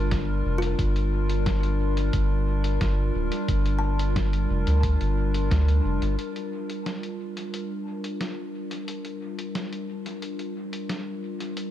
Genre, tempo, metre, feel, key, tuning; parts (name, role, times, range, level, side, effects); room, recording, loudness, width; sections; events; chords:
ambient dub; 89 BPM; 4/4; straight; G minor; A4 = 440 Hz
warbly tape-like pad; sustained chords; 0.0-11.7 s; G3 to Bb4; -30 LUFS; left 2 dB; chorus, built-in reverb
kalimba; arpeggios; 0.0-5.2 s; F4 to A5; -38 LUFS; left 2 dB; dub echo
soft dub sub bass; bass; 0.0-6.2 s; D1 to D2; -23 LUFS; equal
electronic kick drum; drums; 0.1-5.6 s; -28 LUFS; equal; studio reverb
lo-fi sampler-style drum kit; drums; 0.1-11.7 s; hi-hat, snare drum; -36 LUFS; left 1 dB; studio reverb, dub echo
digital ambience; -24 LUFS; side -12 dB against mid
0.0-6.2 A section; 6.2-11.7 B section
filter sweep on ambient pad 6.2-11.7
0.0 Gm7